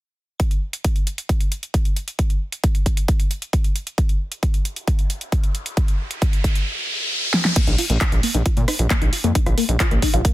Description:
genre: uplifting trance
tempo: 134 BPM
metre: 4/4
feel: straight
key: unclear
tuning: A4 = 440 Hz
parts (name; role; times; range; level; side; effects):
- big-room dance drum kit; drums; 0.4-10.3 s; crash cymbal, handclaps, hi-hat, rim click, snare drum; -25 LUFS; equal; overdrive, sidechain pumping on hats, sidechain pumping on cymbals
- electronic kick drum; drums; 0.4-10.3 s; none; -19 LUFS; equal; overdrive
- riser; sound effects; 5.5-7.6 s; none; -26 LUFS; equal; none
- tight sequenced synth; arpeggios; 7.6-10.3 s; Bb3 to F4; -25 LUFS; left 4 dB; chorus, phaser, cassette tape, sidechain pumping, dub echo
- gritty driven synth bass; bass; 7.7-10.2 s; Bb1 to Bb2; -20 LUFS; equal; sidechain pumping
room: digital ambience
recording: dense, heavily limited modern master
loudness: -18 LUFS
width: side -16 dB against mid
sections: 0.4-7.6 A section; 7.6-10.3 B section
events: riser 5.5-7.6; drum fill 7.3; filter sweep on synth arpeggio sound 7.6-10.3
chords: 0.4 N.C.; 7.6 Bbsus4

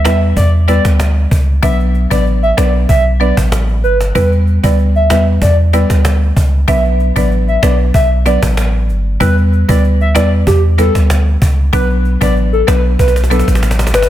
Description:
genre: dancehall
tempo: 95 BPM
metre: 4/4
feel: straight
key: B minor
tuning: A4 = 440 Hz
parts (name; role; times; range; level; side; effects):
- hollow clarinet-like synth lead; melody; 0.0-14.1 s; G4 to E5; -17 LUFS; equal; chorus, phaser, ping-pong delay
- buzzing marimba with medium mallets; accompaniment; 0.0-13.5 s; F#3 to B4; -17 LUFS; left 1 dB; none
- clean 808-style bass; bass; 0.0-14.1 s; G1 to E2; -12 LUFS; equal; none
- cajon; drums; 0.1-14.1 s; none; -19 LUFS; equal; none
room: little or no reverb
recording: dense, heavily limited modern master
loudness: -9 LUFS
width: side -12 dB against mid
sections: 0.0-14.1 A section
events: drum fill 13.0-14.1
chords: 0.0 Em; 1.6 Bm; 4.2 Em; 6.7 Bm; 9.2 Em; 11.7 Bm

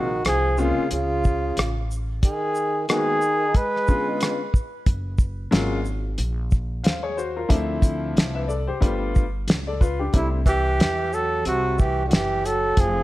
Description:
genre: hip hop, jazz-hop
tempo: 91 BPM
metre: 4/4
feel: swing 59% on 16ths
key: unclear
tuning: A4 = 438 Hz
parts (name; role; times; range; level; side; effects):
- breathy flugelhorn; melody; 0.0-4.5, 10.2-13.0 s; E4 to Cb5; -24 LUFS; equal; tape echo
- breathy tenor saxophone; second line; 0.0-4.5, 10.1-13.0 s; C3 to Ab3; -29 LUFS; right 4 dB; none
- warm concert grand piano; accompaniment; 0.0-10.4 s; Db3 to F5; -27 LUFS; left 3 dB; none
- upright bass; bass; 0.0-13.0 s; F1 to E2; -27 LUFS; equal; none
- cloth-damped thuddy drum kit; drums; 0.2-13.0 s; hi-hat, kick drum, rim click, shaker, snare drum; -20 LUFS; equal; none
room: light reverb, small room ambience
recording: none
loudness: -20 LUFS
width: side -17 dB against mid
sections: 0.0-13.0 A section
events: none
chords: 0.0 Bbmadd9; 2.2 Abm7; 3.5 Db7b9; 4.9 Gbmaj9; 7.5 Dm7; 8.8 G7; 10.1 C6

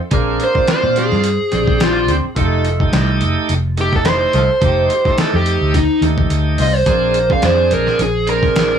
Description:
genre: straight-eighth soul blues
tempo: 107 BPM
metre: 4/4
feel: swing 55% on 16ths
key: F mixolydian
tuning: A4 = 440 Hz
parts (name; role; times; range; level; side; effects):
- bright tonewheel organ; accompaniment; 0.1-8.8 s; A3 to Ab4; -21 LUFS; right 6 dB; slow rotary speaker, overdrive
- dark horn section; sustained chords; 0.1-7.4 s; G3 to C5; -23 LUFS; equal; none
- vintage muted fingered electric bass; bass; 0.1-8.8 s; F1 to Bb2; -18 LUFS; equal; none
- dusty soul sampler-style drum kit; drums; 0.1-8.7 s; hi-hat, kick drum, snare drum; -19 LUFS; equal; none
- dark smooth lead guitar; melody; 0.4-8.8 s; Eb4 to F5; -17 LUFS; equal; overdrive, tape echo
room: moderate studio reverb, RT60 0.5 s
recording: none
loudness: -13 LUFS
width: side -8 dB against mid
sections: 0.0-8.8 A section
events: lead electric guitar solo 0.0-8.8; kick and snare drop out 6.3-6.9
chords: 0.1 Bb7; 2.4 F7; 6.9 Bb7

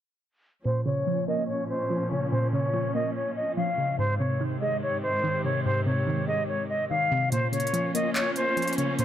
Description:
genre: hip hop, trap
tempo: 144 BPM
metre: 4/4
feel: half-time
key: Bb minor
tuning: A4 = 440 Hz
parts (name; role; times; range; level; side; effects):
- silver concert flute; melody; 0.7-9.0 s; C5 to F5; -27 LUFS; equal; low-pass filter, digital delay
- glassy wavetable pluck; accompaniment; 0.7-9.0 s; Ab2 to Bb3; -29 LUFS; equal; chorus, low-pass filter
- dark symphonic string section; sustained chords; 0.7-9.0 s; Ab2 to F4; -33 LUFS; equal; low-pass filter
- trap drum kit; drums; 7.3-9.0 s; handclaps, hi-hat; -32 LUFS; right 1 dB; overdrive
room: light reverb, small room ambience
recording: none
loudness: -24 LUFS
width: side -10 dB against mid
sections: 0.7-7.3 A section; 7.3-9.0 B section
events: filter sweep 0.7-7.3; kick muted 7.3-9.0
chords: 0.7 Bbm; 4.0 Ab; 7.3 Bbm

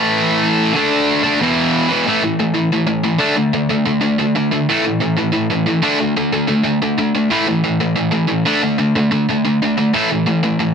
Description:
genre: punk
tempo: 183 BPM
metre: 4/4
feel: straight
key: unclear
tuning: A4 = 438 Hz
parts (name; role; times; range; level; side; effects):
- distorted electric guitar; solo; 0.0-10.7 s; E2 to D4; -14 LUFS; equal; overdrive
room: light reverb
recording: heavily compressed radio sound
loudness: -14 LUFS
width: side -6 dB against mid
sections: 0.0-2.1 A section; 2.1-10.7 B section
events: half time 0.0-2.1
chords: 0.0 A5; 0.7 D5; 1.4 E5; 2.1 A5; 3.2 D5; 4.7 A5; 5.8 D5; 7.3 A5; 8.5 D5; 9.9 A5

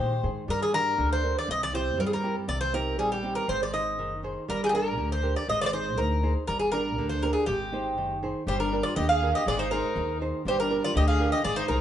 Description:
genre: greek folk, Greek bouzouki band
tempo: 120 BPM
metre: 2/4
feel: straight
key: G phrygian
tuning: A4 = 441 Hz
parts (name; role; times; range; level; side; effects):
- Greek bouzouki; melody; 0.0-11.8 s; G4 to F5; -27 LUFS; equal; none
- rich violin; second line; 0.0-0.2, 8.5-11.8 s; D4 to C5; -32 LUFS; left 5 dB; none
- nylon-string guitar; accompaniment; 0.0-11.8 s; C3 to C5; -32 LUFS; right 3 dB; none
- upright bass; bass; 0.0-11.8 s; F#1 to Bb2; -31 LUFS; equal; none
room: moderate stone room reverb, RT60 1.1 s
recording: band playing live in one room, nothing above 10.9 kHz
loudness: -24 LUFS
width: side -10 dB against mid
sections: 0.5-8.5 A section; 8.5-11.8 B section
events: none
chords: 0.5 Gm; 1.5 C; 2.5 Cm; 3.5 Ab; 4.5 Gm; 5.5 Ab; 6.5 Gm; 7.5 Ab; 8.5 Gm; 9.5 Ab; 10.5 Gm

